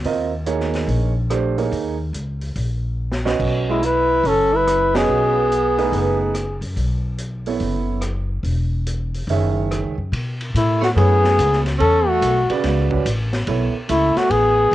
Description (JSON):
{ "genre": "modal jazz", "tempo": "143 BPM", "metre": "4/4", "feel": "swing 65% on 8ths", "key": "B dorian from 10.1 s", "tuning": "A4 = 440 Hz", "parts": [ { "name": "upright bass", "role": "bass", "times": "0.0-14.7 s", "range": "E1 to B2", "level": "-21 LUFS", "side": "left 1 dB", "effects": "none" }, { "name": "vintage drum kit", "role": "drums", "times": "0.0-14.7 s", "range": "crash cymbal, hi-hat, kick drum, ride cymbal, rim click, snare drum", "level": "-30 LUFS", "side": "left 1 dB", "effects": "none" }, { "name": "warm upright piano", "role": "accompaniment", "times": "0.1-14.7 s", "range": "C#3 to E5", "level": "-23 LUFS", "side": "right 6 dB", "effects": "plate reverb" }, { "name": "trumpet with bucket mute", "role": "melody", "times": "3.7-6.6, 10.6-14.7 s", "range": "E4 to B4", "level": "-17 LUFS", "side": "left 2 dB", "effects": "cassette tape" }, { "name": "breathy alto saxophone", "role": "second line", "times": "3.7-6.6, 10.6-14.7 s", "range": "Ab3 to E4", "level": "-24 LUFS", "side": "right 8 dB", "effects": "plate reverb" } ], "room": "light reverb", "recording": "home recording on cassette, nothing above 10.5 kHz", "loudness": "-17 LUFS", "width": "side -14 dB against mid", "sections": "0.0-10.1 A section; 10.1-14.7 B section", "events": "drum fill 3.0-3.4; band accent 4.9", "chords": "0.0 Eb7sus4; 3.4 B9sus4" }